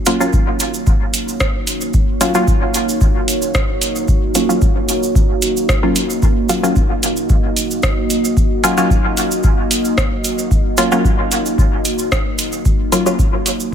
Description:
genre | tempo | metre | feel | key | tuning
dub techno | 112 BPM | 4/4 | straight | unclear | A4 = 440 Hz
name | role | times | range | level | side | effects
deep dark ambient pad | sustained chords | 0.0-13.7 s | Bb3 to Eb5 | -20 LUFS | right 1 dB | chorus, built-in reverb, sidechain pumping
filtered dub chord stab | stabs | 0.1-13.3 s | Gb3 to F4 | -18 LUFS | equal | chorus, phaser, sidechain pumping, dub echo
booming analog drum machine | drums | 0.1-13.6 s | hi-hat, rim click | -21 LUFS | right 1 dB | dub echo
cabasa | percussion | 0.1-13.7 s | none | -24 LUFS | right 5 dB | none
electronic kick drum | drums | 0.3-13.3 s | none | -16 LUFS | equal | none
room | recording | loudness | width
light reverb, digital ambience | none | -13 LUFS | side -8 dB against mid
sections
0.0-13.7 A section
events
none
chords
0.0 Ebm7

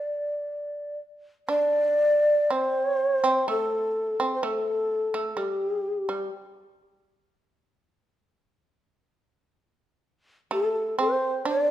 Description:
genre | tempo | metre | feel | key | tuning
japanese traditional, Japanese chamber music | 64 BPM | 4/4 | rubato | unclear | A4 = 439 Hz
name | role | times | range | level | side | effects
breathy mellow shakuhachi | melody | 0.0-11.7 s | G4 to D5 | -24 LUFS | equal | none
shamisen | second line | 0.0-11.7 s | G3 to D4 | -29 LUFS | right 3 dB | none
room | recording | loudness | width
moderate recital hall reverb, RT60 1.5 s | minimal, uncompressed stereo recording | -23 LUFS | side -12 dB against mid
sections
0.0-1.5 A section; 1.5-11.7 B section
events
none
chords
none

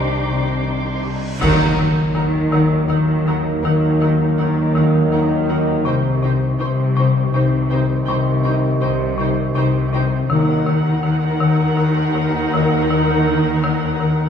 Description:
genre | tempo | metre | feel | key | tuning
cinematic, suspense film score | 81 BPM | 3/4 | straight | unclear | A4 = 440 Hz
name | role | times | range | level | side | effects
muted symphonic violin section | melody | 0.0-14.3 s | Gb5 to G5 | -32 LUFS | left 1 dB | none
muted symphonic violin section | second line | 0.0-14.3 s | D4 to C5 | -27 LUFS | left 1 dB | none
muted symphonic viola section | accompaniment | 0.0-14.3 s | Eb4 to G4 | -28 LUFS | right 2 dB | none
warm French horn section | sustained chords | 0.0-12.8 s | Eb3 to Eb4 | -25 LUFS | left 3 dB | none
folk marimba with hard mallets | riff | 0.0-14.2 s | C3 to C4 | -19 LUFS | left 4 dB | none
muted studio cello section | bass | 0.0-14.3 s | C3 to Eb3 | -24 LUFS | right 1 dB | none
muted symphonic double bass section | bass | 0.0-14.3 s | C2 to Eb2 | -24 LUFS | right 3 dB | none
reverse cymbal and impact | sound effects | 1.1-3.6 s | none | -29 LUFS | right 1 dB | none
muted studio violin section | texture | 0.0-1.0 s | C6 to D6 | -29 LUFS | equal | none
warm trombone section | sustained chords | 1.4-12.8 s | Eb3 to G3 | -24 LUFS | right 4 dB | none
clash cymbals and concert bass drum | percussion | 1.4-2.9 s | none | -29 LUFS | right 1 dB | none
room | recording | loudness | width
wet scoring stage reverb, RT60 2.0 s | heard from further back in the room, studio reverb | -15 LUFS | side -8 dB against mid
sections
0.0-1.4 A section; 1.4-14.3 B section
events
reverse cymbal 1.1-1.4; band accent 1.4-2.1; impact 1.4-3.6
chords
0.0 Cmadd9; 1.4 Ebm; 5.9 Cm; 10.3 Ebm

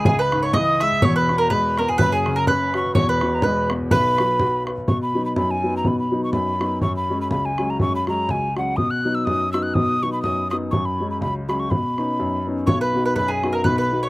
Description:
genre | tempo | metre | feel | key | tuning
celtic folk, Celtic polka | 123 BPM | 2/4 | swing 56% on 8ths | B major | A4 = 440 Hz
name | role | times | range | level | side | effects
mellow hollow mid whistle | melody | 0.0-14.1 s | F#5 to F#6 | -23 LUFS | equal | slapback echo
mandolin | second line | 0.0-4.6, 12.7-14.1 s | G#4 to E5 | -23 LUFS | right 3 dB | none
warm grand piano | accompaniment | 0.0-14.1 s | E1 to B4 | -23 LUFS | left 1 dB | slapback echo
bodhran | percussion | 0.1-13.8 s | none | -23 LUFS | equal | none
room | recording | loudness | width
little or no reverb | recorded outdoors, with no room sound | -18 LUFS | side -19 dB against mid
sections
0.0-4.9 A section; 4.9-12.7 B section; 12.7-14.1 B section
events
none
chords
0.0 C#m; 1.0 E; 2.0 F#sus4; 3.0 E; 3.9 B5; 4.9 B; 6.8 F#sus2; 8.8 B; 10.7 F#sus2; 11.7 Badd9; 12.7 B

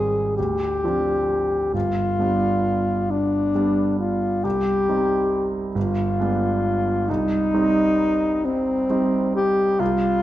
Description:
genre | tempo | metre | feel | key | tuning
classical, romantic duo for alto saxophone and grand piano | 44 BPM (dotted quarters) | 6/8 | rubato | C minor | A4 = 441 Hz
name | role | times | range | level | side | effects
mellow alto saxophone | melody | 0.0-10.2 s | C4 to Ab4 | -21 LUFS | left 2 dB | none
clear concert grand piano | accompaniment | 0.0-10.2 s | G1 to Eb4 | -23 LUFS | right 3 dB | none
room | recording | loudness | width
wet recital hall reverb, RT60 1.4 s | none | -19 LUFS | side -14 dB against mid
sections
0.0-10.2 A section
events
none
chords
0.4 Dmadd11; 1.7 G7; 4.4 Cm; 5.8 G7b9; 7.1 Cm

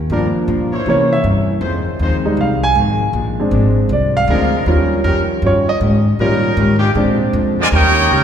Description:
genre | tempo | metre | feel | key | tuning
jazz | 158 BPM | 4/4 | swing 64% on 8ths | Eb mixolydian | A4 = 440 Hz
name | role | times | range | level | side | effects
upright bass | bass | 0.0-8.2 s | Ab1 to C3 | -17 LUFS | equal | none
hollow-body jazz guitar | accompaniment | 0.1-8.2 s | F2 to G4 | -24 LUFS | left 2 dB | none
warm concert grand piano | accompaniment | 0.1-7.6 s | E3 to Ab5 | -17 LUFS | right 1 dB | none
bright trombone section | sustained chords | 0.1-8.2 s | G3 to Db5 | -23 LUFS | equal | none
clear trumpet section | melody | 7.6-8.2 s | Eb4 to Ab5 | -12 LUFS | equal | none
bright trombone section | second line | 7.6-8.2 s | D3 to G4 | -19 LUFS | right 4 dB | none
room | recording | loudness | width
wet concert hall reverb, RT60 2.1 s | recorded in a church or concert hall | -13 LUFS | side -8 dB against mid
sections
0.0-7.7 A section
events
grand piano solo 0.0-7.7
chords
0.1 Gm7; 0.9 C7b9; 1.6 Fm7; 3.1 Bb7; 4.7 Eb7; 7.0 Bb7; 7.7 Eb7

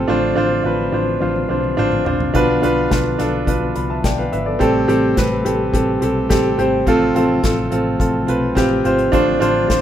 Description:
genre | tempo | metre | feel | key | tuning
piano-driven pop | 106 BPM | 4/4 | straight | unclear | A4 = 440 Hz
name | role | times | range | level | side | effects
bright grand piano | accompaniment | 0.0-9.8 s | A2 to B5 | -16 LUFS | right 1 dB | none
mellow tonewheel organ | sustained chords | 0.0-9.8 s | C3 to C4 | -25 LUFS | left 4 dB | chorus vibrato, fast rotary speaker
vintage muted picked electric bass | bass | 0.0-9.8 s | G#1 to C2 | -24 LUFS | left 1 dB | none
unplugged drum kit | drums | 1.2-9.8 s | hi-hat, kick drum, snare drum, toms | -22 LUFS | left 1 dB | none
room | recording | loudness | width
light reverb, small room ambience | rough home demo mix | -15 LUFS | side -10 dB against mid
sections
0.0-9.8 A section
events
drum fill 1.2-2.3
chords
0.1 Dm7/A; 2.3 Bdim; 4.6 Am7; 6.9 F/A; 9.1 Dm7/A

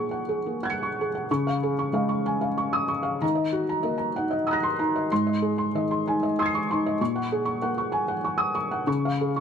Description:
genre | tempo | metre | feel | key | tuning
neoclassical minimalist piano | 63 BPM (dotted quarters) | 6/8 | rubato | Db major | A4 = 444 Hz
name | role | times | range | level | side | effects
felt-muted upright piano | solo | 0.0-9.4 s | Ab2 to Db7 | -23 LUFS | equal | none
room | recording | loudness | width
light reverb | close, detailed microphones | -23 LUFS | side -7 dB against mid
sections
0.0-1.3 A section; 1.3-9.4 B section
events
none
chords
0.0 Gbadd9/Bb; 1.3 Db; 3.2 Ebm; 5.1 Ab; 7.0 Gbadd9/Bb; 8.9 Db

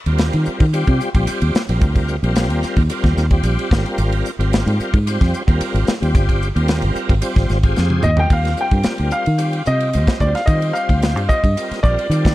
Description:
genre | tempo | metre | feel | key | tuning
electric jazz fusion | 111 BPM | 4/4 | straight | Eb major | A4 = 441 Hz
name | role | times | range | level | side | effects
bright tonewheel organ | accompaniment | 0.1-12.3 s | G3 to C5 | -24 LUFS | equal | slow rotary speaker, chorus vibrato
fingered electric bass | bass | 0.1-12.3 s | G1 to Eb3 | -17 LUFS | equal | none
tight funk drum kit | drums | 0.1-12.3 s | hi-hat, kick drum, ride cymbal, snare drum, toms | -19 LUFS | equal | none
bright baby grand piano | melody | 8.0-12.3 s | D5 to G5 | -21 LUFS | equal | none
room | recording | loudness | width
light reverb, small room ambience | dark, warm production | -15 LUFS | side -16 dB against mid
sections
0.0-8.3 A section; 8.3-12.3 B section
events
drum fill 7.8-8.3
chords
0.0 Ebadd9; 3.7 Abmaj9; 8.3 Ebmaj9

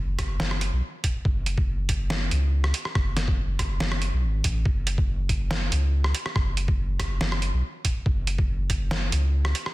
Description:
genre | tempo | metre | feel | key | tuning
deep dubstep | 141 BPM | 4/4 | half-time | F# minor | A4 = 442 Hz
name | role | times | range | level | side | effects
soft dub sub bass | bass | 0.0-9.5 s | F#1 to C#2 | -25 LUFS | equal | none
electronic kick drum | drums | 0.2-8.8 s | none | -25 LUFS | equal | studio reverb
trip hop sampler-style drum kit | drums | 0.2-9.7 s | hi-hat, rim click, snare drum | -29 LUFS | right 1 dB | studio reverb
room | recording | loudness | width
light reverb, digital ambience | dense, heavily limited modern master | -23 LUFS | side -19 dB against mid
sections
0.0-9.7 A section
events
none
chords
none

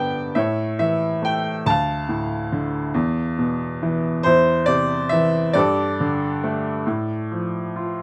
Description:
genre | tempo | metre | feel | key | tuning
classical, lyrical solo piano | 46 BPM (dotted quarters) | 6/8 | rubato | D minor | A4 = 438 Hz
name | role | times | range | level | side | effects
bright upright piano | solo | 0.0-8.0 s | D2 to B5 | -22 LUFS | equal | none
room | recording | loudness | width
light reverb | close, detailed microphones | -22 LUFS | mono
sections
0.0-8.0 A section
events
none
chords
0.4 A; 1.7 Dm; 3.0 E5; 4.3 C/E; 5.6 Gsus2; 6.9 Dm/A

